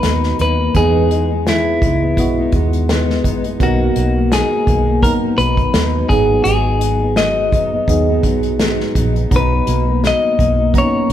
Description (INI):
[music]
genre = indie pop, bedroom pop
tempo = 84 BPM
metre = 4/4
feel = swing 55% on 16ths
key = B major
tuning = A4 = 442 Hz
[part]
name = clean electric guitar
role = melody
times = 0.0-11.1 s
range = E4 to D#5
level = -18 LUFS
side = left 2 dB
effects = none
[part]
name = fingerpicked steel-string acoustic guitar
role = accompaniment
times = 0.0-11.1 s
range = G#2 to D#4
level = -22 LUFS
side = left 5 dB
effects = vibrato effect
[part]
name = tine electric piano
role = accompaniment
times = 0.0-11.1 s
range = E3 to A#5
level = -20 LUFS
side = right 3 dB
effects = medium stereo tremolo
[part]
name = vintage muted fingered electric bass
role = bass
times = 0.0-11.1 s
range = F#1 to E2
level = -18 LUFS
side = equal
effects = none
[part]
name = unplugged drum kit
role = drums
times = 0.0-11.1 s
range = hi-hat, kick drum, snare drum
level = -19 LUFS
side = equal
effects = none
[sound]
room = moderate large studio reverb, RT60 1.3 s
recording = band playing live in one room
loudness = -13 LUFS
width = side -11 dB against mid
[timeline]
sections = 0.0-11.1 A section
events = none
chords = 0.0 Bmaj7; 0.8 Emaj7; 3.6 Bmaj7; 6.1 G#m7; 9.3 Bmaj7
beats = 0.04 | 0.75 1.46 2.18 2.89 | 3.60 4.32 5.03 5.75 | 6.46 7.17 7.89 8.60 | 9.32 10.03 10.74